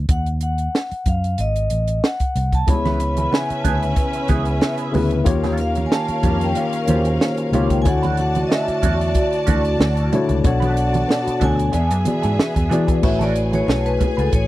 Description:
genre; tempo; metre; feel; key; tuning
lush 1970s-style soul; 93 BPM; 4/4; swing 54% on 16ths; A major; A4 = 439 Hz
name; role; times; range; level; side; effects
vintage muted fingered electric bass; bass; 0.0-14.5 s; G#1 to E3; -21 LUFS; equal; none
vibraphone with medium hard mallets; melody; 0.1-14.5 s; A4 to B5; -25 LUFS; equal; none
compact cocktail drum kit; drums; 0.1-14.5 s; crash cymbal, hi-hat, kick drum, snare drum; -20 LUFS; equal; none
warm studio string section; second line; 2.7-14.5 s; B3 to A5; -26 LUFS; left 1 dB; none
tine electric piano; accompaniment; 2.7-14.5 s; B2 to E5; -22 LUFS; left 2 dB; auto-pan
electric guitar through a small old amp; riff; 2.7-14.4 s; B3 to B4; -30 LUFS; right 5 dB; wah, phaser
congas; percussion; 2.7-14.5 s; none; -26 LUFS; right 4 dB; none
room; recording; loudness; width
little or no reverb; dry, close 1970s-style studio recording; -16 LUFS; side -16 dB against mid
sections
0.0-13.0 A section; 13.0-14.5 B section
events
vibraphone solo 13.0-14.5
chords
0.1 D#madd9; 1.4 G#; 2.7 C#m7; 5.3 D#9; 7.9 Dmaj7; 10.4 Bm7; 11.7 E7; 13.0 A6

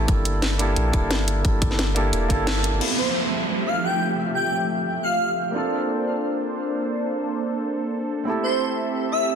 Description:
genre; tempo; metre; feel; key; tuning
liquid drum and bass; 176 BPM; 4/4; straight; unclear; A4 = 440 Hz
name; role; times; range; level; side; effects
dark baby grand piano; accompaniment; 0.0-9.4 s; A3 to A4; -27 LUFS; right 2 dB; low-pass filter, ping-pong delay
saturated sub bass; bass; 0.0-2.8 s; D1 to Bb1; -24 LUFS; equal; none
electronic kick drum; drums; 0.1-2.4 s; none; -21 LUFS; equal; studio reverb
garage drum kit; drums; 0.1-2.9 s; crash cymbal, hi-hat, snare drum; -26 LUFS; left 1 dB; studio reverb
warm analog pad; sustained chords; 2.8-9.4 s; F3 to E5; -26 LUFS; right 1 dB; chorus, phaser, sidechain pumping
downlifter; sound effects; 2.8-5.5 s; none; -28 LUFS; right 3 dB; none
airy dreamy lead; melody; 3.0-5.3, 8.4-9.3 s; C5 to G5; -25 LUFS; equal; chorus, tape echo
room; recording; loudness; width
light reverb; dense, heavily limited modern master; -21 LUFS; side -7 dB against mid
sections
0.0-2.8 A section; 2.8-9.4 B section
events
band accent 2.5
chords
0.1 Gm69; 2.8 Fmaj9; 5.5 Bbmaj9; 8.3 Am7

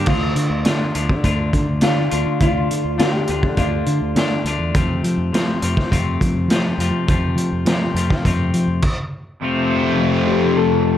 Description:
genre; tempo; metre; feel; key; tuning
indie rock; 103 BPM; 4/4; straight; D minor; A4 = 440 Hz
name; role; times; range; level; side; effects
biting overdriven guitar; riff; 0.0-0.1, 9.4-11.0 s; F2 to C4; -22 LUFS; right 9 dB; lush chorus, tape echo
cranked stack guitar; riff; 0.0-11.0 s; F2 to F4; -21 LUFS; left 5 dB; overdrive
fingered electric bass; bass; 0.0-8.8 s; D2 to F3; -21 LUFS; equal; none
mellow electric guitar; melody; 0.1-4.4, 10.3-11.0 s; F4 to A4; -23 LUFS; left 2 dB; spring reverb, plate reverb, tape echo
raw garage drum kit; drums; 0.1-9.0 s; crash cymbal, hi-hat, kick drum, snare drum; -20 LUFS; equal; none
room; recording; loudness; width
light reverb; dark, warm production; -16 LUFS; side -11 dB against mid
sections
0.1-9.4 A section; 9.4-11.0 B section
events
stop 8.8-9.4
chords
0.1 Dm; 4.7 F

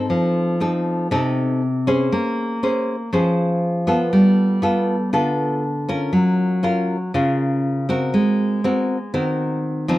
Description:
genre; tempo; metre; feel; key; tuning
bossa nova; 120 BPM; 4/4; straight; unclear; A4 = 436 Hz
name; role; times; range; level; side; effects
nylon-string guitar; solo; 0.0-10.0 s; C3 to C5; -17 LUFS; equal; none
room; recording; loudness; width
light reverb; close, detailed microphones; -17 LUFS; side -16 dB against mid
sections
0.0-10.0 A section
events
none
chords
0.1 F7; 2.1 Bbm9; 4.1 G9; 6.1 Gbmaj7; 8.1 Ab9

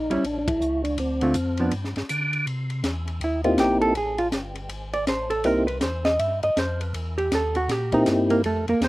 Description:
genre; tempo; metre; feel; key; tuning
soul jazz organ trio; 161 BPM; 4/4; swing 63% on 8ths; C mixolydian; A4 = 439 Hz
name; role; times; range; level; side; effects
percussive tonewheel organ; melody; 0.0-5.7, 7.9-8.4 s; Bb3 to G4; -22 LUFS; equal; slow rotary speaker, chorus vibrato
tonewheel organ; bass; 0.0-8.9 s; G1 to D3; -29 LUFS; equal; chorus vibrato, stopped rotary speaker
hollow-body jazz guitar; accompaniment; 0.1-8.9 s; D3 to E5; -24 LUFS; right 1 dB; none
compact cocktail drum kit; drums; 0.1-8.9 s; hi-hat, kick drum, ride cymbal, snare drum; -31 LUFS; left 1 dB; none
room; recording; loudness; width
little or no reverb; recorded outdoors, with no room sound; -21 LUFS; side -18 dB against mid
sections
0.0-2.5 A section; 2.5-8.9 B section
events
band accent 0.4; hollow-body jazz guitar solo 2.5-8.9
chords
0.2 A; 1.0 Dm7; 1.7 G5; 2.5 C7#9; 4.0 Gsus4; 5.5 C7#9

